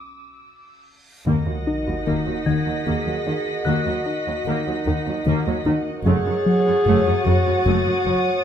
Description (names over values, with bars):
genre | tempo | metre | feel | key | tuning
cinematic, suspense film score | 75 BPM | 3/4 | straight | Eb minor | A4 = 436 Hz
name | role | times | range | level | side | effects
reverse cymbal and sub drop | sound effects | 1.2-3.7 s | none | -32 LUFS | right 1 dB | none
muted studio violin section | texture | 0.0-8.4 s | D6 to Cb7 | -33 LUFS | left 2 dB | none
glass harmonica | sustained chords | 1.2-8.4 s | Gb4 to Gb5 | -30 LUFS | equal | none
muted studio violin section | melody | 1.3-8.4 s | Gb5 | -33 LUFS | right 2 dB | none
muted studio violin section | second line | 1.3-8.4 s | Db5 to Eb5 | -30 LUFS | left 2 dB | none
muted studio viola section | accompaniment | 1.3-8.1 s | Db3 to Bb3 | -28 LUFS | right 3 dB | none
plucky analog bass | riff | 1.3-8.3 s | Gb2 to Eb4 | -24 LUFS | left 3 dB | none
muted chamber cello section | bass | 1.3-8.1 s | Eb2 to Gb2 | -28 LUFS | right 3 dB | none
muted studio double bass section | bass | 1.3-8.1 s | Gb1 to Eb2 | -28 LUFS | right 4 dB | none
warm clarinet | second line | 1.7-8.4 s | Eb4 to Ab4 | -24 LUFS | equal | none
celesta | texture | 2.5-6.1 s | Gb6 to Ab6 | -35 LUFS | left 5 dB | none
room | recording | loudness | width
light reverb | close, detailed microphones | -18 LUFS | side -9 dB against mid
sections
0.0-1.3 A section; 1.3-8.4 A section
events
break 0.0-1.3; reverse cymbal 1.2; impact 1.3-3.7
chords
0.0 N.C.; 1.3 Ebm; 6.1 Gbm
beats
0.46 | 1.26 2.06 2.86 | 3.66 4.46 5.26 | 6.06 6.86 7.66